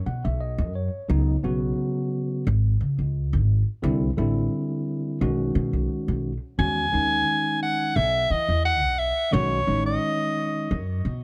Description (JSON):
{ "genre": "jazz", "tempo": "88 BPM", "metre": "4/4", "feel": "straight", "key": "E major", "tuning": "A4 = 441 Hz", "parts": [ { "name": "tine electric piano", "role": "accompaniment", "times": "0.1-10.7 s", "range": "C#3 to F#5", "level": "-29 LUFS", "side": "equal", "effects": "none" }, { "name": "upright bass", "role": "bass", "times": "0.1-11.2 s", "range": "G#1 to E3", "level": "-26 LUFS", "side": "equal", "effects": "none" }, { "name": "clear soprano saxophone", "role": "melody", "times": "6.6-10.8 s", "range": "C#5 to G#5", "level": "-26 LUFS", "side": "equal", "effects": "none" } ], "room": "small room ambience", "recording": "none", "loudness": "-24 LUFS", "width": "mono", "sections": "0.0-11.2 A section", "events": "tine electric piano fill 0.0-1.1", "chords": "0.0 Badd9; 1.1 C#5; 3.8 C69; 5.2 G#m7/B; 6.6 Emaj9; 9.3 B13", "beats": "0.41 | 1.09 1.78 2.47 3.16 | 3.84 4.53 5.22 5.90 | 6.59 7.27 7.96 8.64 | 9.33 10.02 10.70" }